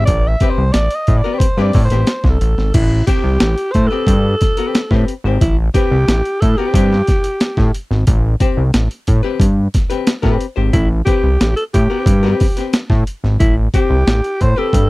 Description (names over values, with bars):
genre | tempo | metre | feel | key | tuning
funk | 90 BPM | 4/4 | straight | A minor | A4 = 440 Hz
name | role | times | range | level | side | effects
breathy alto saxophone | melody | 0.0-14.9 s | E4 to E5 | -19 LUFS | equal | none
archtop guitar, miked and amplified | accompaniment | 0.0-14.8 s | C4 to C5 | -21 LUFS | left 7 dB | none
fat analog bass | bass | 0.0-14.9 s | G#1 to A2 | -14 LUFS | equal | none
breakbeat sampler-style drum kit | drums | 0.1-14.9 s | crash cymbal, hi-hat, kick drum, snare drum | -15 LUFS | equal | overdrive
room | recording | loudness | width
little or no reverb | dry, close 1970s-style studio recording | -12 LUFS | side -21 dB against mid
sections
0.0-2.7 A section; 2.7-14.9 B section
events
alto saxophone solo 0.0-2.7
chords
0.0 Am9